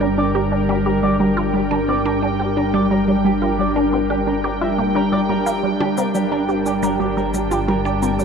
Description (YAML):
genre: ambient, sequencer-driven space music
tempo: 88 BPM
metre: 4/4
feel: straight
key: G minor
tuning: A4 = 440 Hz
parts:
  - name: evolving wavetable pad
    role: sustained chords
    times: 0.0-8.2 s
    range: G3 to G5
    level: -20 LUFS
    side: equal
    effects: chorus, built-in reverb
  - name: electric guitar with an envelope filter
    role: arpeggios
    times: 0.0-8.1 s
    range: G4 to E5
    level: -26 LUFS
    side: right 1 dB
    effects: auto-pan, low-pass filter, ping-pong delay
  - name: resonant blip pluck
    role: riff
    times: 0.0-8.2 s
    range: G3 to G4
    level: -21 LUFS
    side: right 1 dB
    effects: phaser, vintage 12-bit sampler grit, ping-pong delay
  - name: analog drone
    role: bass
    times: 0.0-8.2 s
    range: G1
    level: -27 LUFS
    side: equal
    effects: chorus
  - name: wind-like tuned noise texture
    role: texture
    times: 0.0-8.2 s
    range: G4 to A5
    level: -32 LUFS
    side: left 1 dB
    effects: built-in reverb
  - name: cabasa and percussion blips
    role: percussion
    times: 5.5-8.2 s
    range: none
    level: -32 LUFS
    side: equal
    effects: ping-pong delay
room: wet huge ambient reverb, RT60 9.5 s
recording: dark, warm production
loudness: -16 LUFS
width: side -6 dB against mid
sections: 0.0-8.2 A section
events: fade-in on synth texture 0.0-8.2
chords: 0.0 Gm